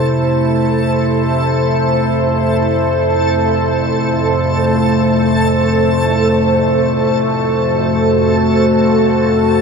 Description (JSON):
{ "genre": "dark ambient drone", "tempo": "free time", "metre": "none", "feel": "none", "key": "unclear", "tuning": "A4 = 440 Hz", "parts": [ { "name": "deep dark ambient pad", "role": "sustained chords", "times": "0.0-9.6 s", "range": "F2 to C5", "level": "-13 LUFS", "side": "equal", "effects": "chorus, built-in reverb" }, { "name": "deep rumbling drone", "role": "drone", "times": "0.0-9.6 s", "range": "F2 to C3", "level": "-19 LUFS", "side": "equal", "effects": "built-in reverb, analog chorus" }, { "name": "backwards swelling texture", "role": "texture", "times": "0.0-9.6 s", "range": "A4", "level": "-22 LUFS", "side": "right 2 dB", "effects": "built-in reverb, analog chorus" } ], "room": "wet huge ambient reverb, RT60 8.0 s", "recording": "dreamy mix soaked in reverb, small room ambience", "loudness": "-12 LUFS", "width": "side -5 dB against mid", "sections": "0.0-9.6 A section", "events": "none", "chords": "0.0 Am/F" }